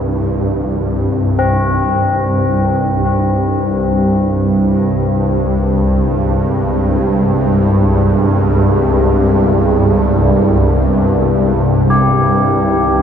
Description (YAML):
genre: dark ambient drone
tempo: free time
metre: none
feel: none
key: unclear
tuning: A4 = 440 Hz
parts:
  - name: deep dark ambient pad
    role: sustained chords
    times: 0.0-13.0 s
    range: D4 to C5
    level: -23 LUFS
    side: right 1 dB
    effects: none
  - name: swarming drone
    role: drone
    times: 0.0-13.0 s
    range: C2 to G2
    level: -12 LUFS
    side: equal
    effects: built-in reverb
  - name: tubular bells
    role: arpeggios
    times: 1.4-13.0 s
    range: C4 to G4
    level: -20 LUFS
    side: left 2 dB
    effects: diffuse ambient delay
room: wet huge ambient reverb, RT60 8.4 s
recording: dark, warm production, nothing above 7.7 kHz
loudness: -11 LUFS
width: side -8 dB against mid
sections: 0.0-13.0 A section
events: none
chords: 0.0 Cm; 3.0 Abm; 11.9 Cm